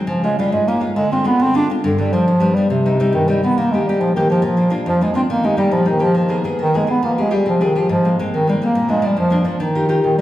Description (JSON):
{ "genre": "italian folk", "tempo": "139 BPM (dotted quarters)", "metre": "6/8", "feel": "straight", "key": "C harmonic minor, Eb major from 3.6 s", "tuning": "A4 = 443 Hz", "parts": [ { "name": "nylon-string guitar", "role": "accompaniment", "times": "0.0-10.2 s", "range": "F2 to Ab4", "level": "-20 LUFS", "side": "left 2 dB", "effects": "none" }, { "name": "mellow bass clarinet", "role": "melody", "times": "0.1-10.2 s", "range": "C3 to D4", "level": "-16 LUFS", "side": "right 1 dB", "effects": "none" } ], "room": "wet recital hall reverb, RT60 1.6 s", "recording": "heard from further back in the room", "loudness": "-14 LUFS", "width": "side -14 dB against mid", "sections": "0.0-3.6 A section; 3.6-10.2 B section", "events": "none", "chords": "0.1 Db; 1.0 Ddim; 1.8 Gsus4; 2.3 G; 2.7 Cm; 3.6 Eb; 4.4 Bb; 5.3 Eb; 6.1 Abmadd9/Eb; 7.0 Fmadd9; 7.9 Abadd9; 8.8 Bb; 9.6 Ebadd9", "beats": "| 0.08 0.52 | 0.96 1.39 | 1.82 2.25 | 2.68 3.12 | 3.56 4.00 | 4.43 4.86 | 5.29 5.71 | 6.14 6.58 | 7.02 7.46 | 7.89 8.32 | 8.75 9.18 | 9.61 10.04" }